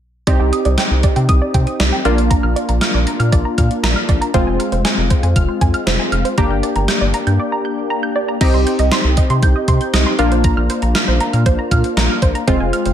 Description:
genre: synth-pop.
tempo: 118 BPM.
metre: 4/4.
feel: straight.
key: C minor.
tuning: A4 = 440 Hz.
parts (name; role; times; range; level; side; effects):
funky polysynth comp; accompaniment; 0.3-12.9 s; Ab3 to G4; -19 LUFS; left 1 dB; chorus.
analog pluck; arpeggios; 0.3-12.9 s; C5 to G6; -22 LUFS; right 3 dB; chorus, ping-pong delay.
rubbery square bass; bass; 0.3-12.9 s; F1 to C3; -17 LUFS; equal; none.
gated 80s digital drum machine; drums; 0.3-12.9 s; crash cymbal, hi-hat, kick drum, snare drum; -17 LUFS; equal; gated reverb, gated reverb snare.
room: light reverb.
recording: faint mains hum.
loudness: -13 LUFS.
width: side -10 dB against mid.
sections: 0.3-8.4 A section; 8.4-12.9 B section.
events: break 7.4-8.4.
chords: 0.3 Cmadd9; 2.1 Bb; 4.3 Fm; 6.4 Gm; 8.4 Cm; 10.2 Bbadd9.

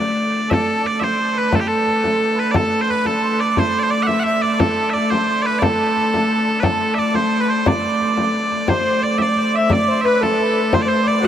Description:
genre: medieval dance.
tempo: 117 BPM (dotted quarters).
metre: 6/8.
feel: straight.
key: unclear.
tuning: A4 = 440 Hz.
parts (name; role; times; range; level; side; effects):
loud bright bagpipes; melody; 0.0-11.3 s; G4 to F#5; -20 LUFS; equal; none.
rich hurdy-gurdy; drone; 0.0-11.3 s; D3 to A3; -22 LUFS; equal; none.
warm harmonica; second line; 0.5-11.3 s; A4 to F#5; -22 LUFS; right 5 dB; none.
frame drum; percussion; 0.5-11.3 s; none; -23 LUFS; left 2 dB; none.
bright reedy bass recorder; second line; 8.7-11.3 s; F#4 to E5; -20 LUFS; left 3 dB; none.
room: wet huge ambient reverb, RT60 7.5 s.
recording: heard from further back in the room.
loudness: -15 LUFS.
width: side -10 dB against mid.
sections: 0.5-8.7 A section; 8.7-11.3 B section.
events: none.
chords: none.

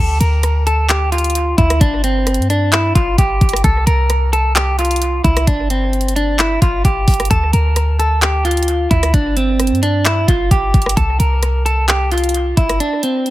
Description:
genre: hip hop, trap.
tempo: 131 BPM.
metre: 4/4.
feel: half-time.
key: unclear.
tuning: A4 = 440 Hz.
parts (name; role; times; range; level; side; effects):
clean electric guitar; melody; 0.0-13.3 s; C4 to Bb4; -17 LUFS; equal; low-pass filter, dub echo.
clean 808-style bass; bass; 0.0-12.8 s; G1 to G2; -16 LUFS; equal; none.
trap drum kit; drums; 0.2-13.3 s; handclaps, hi-hat, kick drum, rim click; -17 LUFS; equal; dub echo.
room: little or no reverb.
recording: echo-heavy mix.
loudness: -12 LUFS.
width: side -16 dB against mid.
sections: 0.0-13.3 A section.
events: kick muted 12.8-13.3.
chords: 0.0 Dm; 1.8 Gsus4; 3.6 C7sus4; 5.5 Gsus4; 7.3 Dm; 9.1 Gsus4; 11.0 C7sus4; 12.8 N.C..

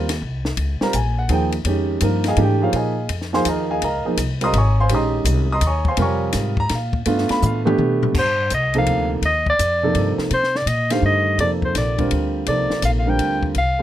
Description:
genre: modal jazz.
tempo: 166 BPM.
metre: 3/4.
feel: swing 65% on 8ths.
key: Bb dorian, C dorian from 8.1 s.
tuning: A4 = 441 Hz.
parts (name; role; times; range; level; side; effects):
warm grand piano; accompaniment; 0.0-13.8 s; C3 to Eb6; -21 LUFS; right 2 dB; none.
upright bass; bass; 0.0-13.8 s; Ab1 to C3; -21 LUFS; equal; none.
compact cocktail drum kit; drums; 0.1-13.7 s; crash cymbal, hi-hat, kick drum, ride cymbal, snare drum, toms; -27 LUFS; left 3 dB; none.
mellow soprano saxophone; melody; 8.2-13.8 s; C5 to G5; -20 LUFS; left 1 dB; none.
room: light reverb.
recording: close, detailed microphones.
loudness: -17 LUFS.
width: side -12 dB against mid.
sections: 0.0-8.1 A section; 8.1-13.8 B section.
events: drum fill 7.4-8.1.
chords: 0.0 Bbm11; 7.1 G7; 8.1 Cm9.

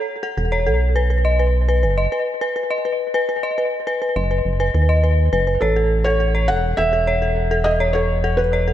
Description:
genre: IDM.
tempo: 103 BPM.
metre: 4/4.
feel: straight.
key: A lydian.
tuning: A4 = 440 Hz.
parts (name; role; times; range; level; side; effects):
dark detuned synth bell; arpeggios; 0.0-8.7 s; A4 to D#5; -20 LUFS; left 2 dB; chorus, analog delay.
rubbery square bass; bass; 0.4-8.7 s; E1 to D#2; -18 LUFS; equal; tube saturation.
felt-muted upright piano; melody; 5.6-8.7 s; A4 to F#5; -20 LUFS; right 1 dB; analog delay.
room: moderate echo chamber reverb, RT60 2.6 s.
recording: echo-heavy mix.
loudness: -16 LUFS.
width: side -12 dB against mid.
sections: 0.0-8.7 A section.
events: none.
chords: 0.0 A; 1.0 B; 5.6 A.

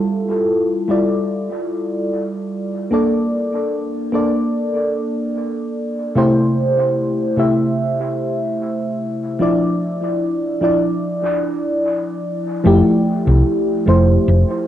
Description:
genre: vaporwave.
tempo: 74 BPM.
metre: 4/4.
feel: straight.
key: F major.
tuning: A4 = 441 Hz.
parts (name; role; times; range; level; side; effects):
mellow FM electric piano; accompaniment; 0.0-14.7 s; C3 to E5; -16 LUFS; equal; wide subtle chorus, dub echo.
hollow-body short-scale fingered electric bass; bass; 12.7-14.4 s; F1 to C2; -13 LUFS; equal; none.
room: moderate spring reverb, RT60 1.5 s.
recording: echo-heavy mix.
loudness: -16 LUFS.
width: side -11 dB against mid.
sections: 0.0-12.7 A section; 12.7-14.7 B section.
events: none.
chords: 0.0 Fmaj9; 2.9 Bbmaj7; 6.2 Am7/C; 9.4 Dmadd9; 12.7 Fmaj9.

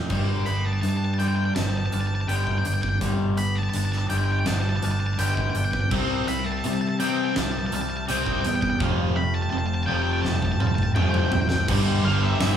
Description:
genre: post-rock.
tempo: 83 BPM.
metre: 4/4.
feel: straight.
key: G mixolydian.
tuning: A4 = 440 Hz.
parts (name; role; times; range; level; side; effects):
pedal harmonium; sustained chords; 0.0-12.6 s; G3 to G5; -40 LUFS; right 3 dB; none.
glockenspiel with soft plastic mallets; arpeggios; 0.0-12.4 s; D6 to A6; -39 LUFS; right 6 dB; none.
twangy electric guitar; arpeggios; 0.0-12.6 s; G2 to G4; -33 LUFS; left 3 dB; none.
biting overdriven guitar; riff; 0.0-0.1, 5.9-12.6 s; F2 to C4; -30 LUFS; right 6 dB; none.
raw garage guitar; riff; 0.1-12.6 s; F2 to C4; -30 LUFS; left 5 dB; overdrive.
growling fingered electric bass; bass; 0.1-12.6 s; F1 to C3; -26 LUFS; equal; overdrive.
huge arena drum kit; drums; 0.1-12.6 s; crash cymbal, hi-hat, kick drum, snare drum, toms; -28 LUFS; right 1 dB; none.
octave-fuzz lead guitar; melody; 0.5-12.5 s; E5 to B5; -29 LUFS; left 1 dB; distortion.
room: moderate large studio reverb, RT60 0.9 s.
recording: band playing live in one room, studio ambience.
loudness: -21 LUFS.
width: side -9 dB against mid.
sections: 0.1-11.7 A section.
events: build-up 0.1-11.7; drum fill 10.2-11.7.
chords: 0.1 G; 5.9 Cmaj7; 8.8 Fadd9; 11.7 G.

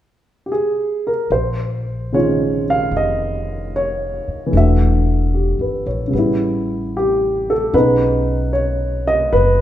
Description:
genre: jazz ballad.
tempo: 75 BPM.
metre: 4/4.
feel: swing 68% on 8ths.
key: unclear.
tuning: A4 = 440 Hz.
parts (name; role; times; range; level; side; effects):
dark baby grand piano; accompaniment; 0.5-9.6 s; C#3 to F5; -17 LUFS; equal; none.
upright bass; bass; 1.3-9.6 s; E1 to B1; -20 LUFS; equal; none.
room: moderate recital hall reverb, RT60 1.5 s.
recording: recorded in a church or concert hall.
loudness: -16 LUFS.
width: side -12 dB against mid.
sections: 0.0-1.3 A section; 1.3-9.6 B section.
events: none.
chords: 0.0 N.C.; 1.3 Bbm11; 4.5 Em7; 6.1 A9; 7.7 Badd9.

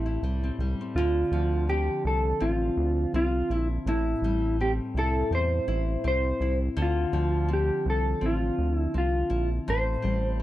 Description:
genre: indie pop, bedroom pop.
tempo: 82 BPM.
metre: 4/4.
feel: swing 55% on 16ths.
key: D minor.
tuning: A4 = 439 Hz.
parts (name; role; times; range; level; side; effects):
mellow electric guitar; melody; 0.0-10.4 s; E4 to C5; -28 LUFS; equal; lush chorus, slapback echo.
nylon-string guitar; accompaniment; 0.0-10.4 s; A2 to E4; -32 LUFS; left 3 dB; wide subtle chorus, warbly pitch drift.
round analog bass; bass; 0.0-10.4 s; A1 to E2; -27 LUFS; equal; none.
room: small room ambience.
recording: dry, close 1970s-style studio recording.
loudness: -24 LUFS.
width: side -14 dB against mid.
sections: 0.9-10.4 A section.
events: none.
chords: 0.0 Am7; 0.9 Dm9; 3.9 Am7; 6.8 Dm9; 9.7 Am7.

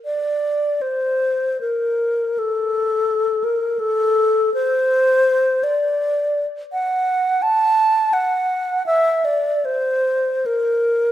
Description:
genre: classical, free, expressive piece for unaccompanied alto flute.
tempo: free time.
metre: none.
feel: none.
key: unclear.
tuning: A4 = 439 Hz.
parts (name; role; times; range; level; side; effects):
bright wooden-headed alto flute; solo; 0.0-11.1 s; A4 to A5; -17 LUFS; equal; none.
room: moderate concert hall reverb, RT60 2.2 s.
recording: none.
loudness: -17 LUFS.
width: side -12 dB against mid.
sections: 0.0-11.1 A section.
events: none.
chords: none.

